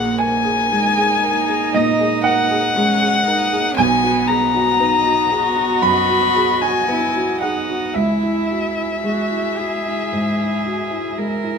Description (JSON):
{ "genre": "neoclassical piano and strings", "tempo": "58 BPM", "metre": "4/4", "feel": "rubato", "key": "unclear", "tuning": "A4 = 440 Hz", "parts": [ { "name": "dark violin", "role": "melody", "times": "0.0-11.6 s", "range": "D#5 to B5", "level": "-19 LUFS", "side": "left 5 dB", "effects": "none" }, { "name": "rich cello", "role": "second line", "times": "0.0-11.6 s", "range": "A#3 to A#4", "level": "-22 LUFS", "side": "right 7 dB", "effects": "none" }, { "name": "warm baby grand piano", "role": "accompaniment", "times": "0.0-11.6 s", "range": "A#1 to B5", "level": "-20 LUFS", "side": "right 1 dB", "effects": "none" }, { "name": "warm chamber string section", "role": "sustained chords", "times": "0.0-11.6 s", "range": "G#3 to D#5", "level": "-28 LUFS", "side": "right 1 dB", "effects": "none" } ], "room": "moderate studio reverb, RT60 0.8 s", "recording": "minimal, uncompressed stereo recording", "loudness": "-15 LUFS", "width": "side -6 dB against mid", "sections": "0.0-11.6 A section", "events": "none", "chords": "0.0 D#sus4/A#; 3.8 Bmaj7; 8.0 C#m" }